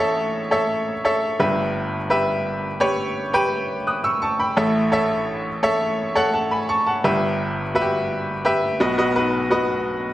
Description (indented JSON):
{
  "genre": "pop",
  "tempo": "85 BPM",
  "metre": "4/4",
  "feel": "straight",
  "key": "unclear",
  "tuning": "A4 = 440 Hz",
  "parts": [
    { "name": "bright upright piano", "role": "solo", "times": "0.0-10.1 s", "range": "G1 to F#6", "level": "-19 LUFS", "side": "equal", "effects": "none" }
  ],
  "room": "wet large studio reverb, RT60 1.4 s",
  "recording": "none",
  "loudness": "-19 LUFS",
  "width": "side -14 dB against mid",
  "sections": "0.0-10.1 A section",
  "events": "none",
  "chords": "0.0 A; 1.4 Em/G; 4.6 A; 7.0 Em/G; 8.8 B"
}